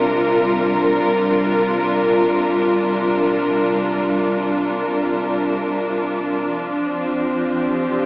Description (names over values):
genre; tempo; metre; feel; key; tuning
ambient; free time; none; none; unclear; A4 = 437 Hz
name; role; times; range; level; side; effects
warm studio string section; sustained chords; 0.0-8.1 s; C3 to Bb4; -16 LUFS; equal; none
analog drone; drone; 0.4-6.6 s; none; barely audible; none; none
room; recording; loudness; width
wet concert hall reverb, RT60 1.9 s; AM radio sound; -16 LUFS; side -23 dB against mid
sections
0.0-6.5 A section; 6.5-8.1 B section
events
none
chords
0.0 C7sus4; 6.5 Fsus2